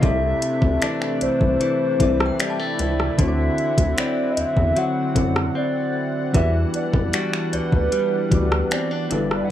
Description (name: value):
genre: contemporary R&B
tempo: 76 BPM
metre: 4/4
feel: straight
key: unclear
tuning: A4 = 440 Hz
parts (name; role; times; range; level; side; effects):
- hollow clarinet-like synth lead; melody; 0.0-9.5 s; B4 to F#5; -25 LUFS; equal; chorus, phaser, tape echo
- soft electric-piano-like synth keys; accompaniment; 0.0-9.5 s; C3 to D5; -26 LUFS; equal; chorus
- warm analog pad; sustained chords; 0.0-9.5 s; C3 to F#5; -29 LUFS; right 1 dB; chorus, tremolo
- direct-recorded clean electric guitar; arpeggios; 0.0-9.5 s; G2 to F#4; -27 LUFS; left 3 dB; tape echo
- rubbery square bass; bass; 0.0-9.4 s; G1 to F#2; -23 LUFS; equal; none
- smooth R&B drum kit; drums; 0.0-9.5 s; finger snaps, hi-hat, kick drum, rim click; -22 LUFS; equal; none
- synth chime; texture; 2.0-8.3 s; B4 to A5; -35 LUFS; left 1 dB; ensemble chorus, tremolo, tape echo
room: digital ambience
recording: dry, gritty hardware recording, small room ambience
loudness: -18 LUFS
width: side -11 dB against mid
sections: 0.0-9.5 A section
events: break 5.6-6.3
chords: 0.0 C69; 3.2 D9; 6.3 Em9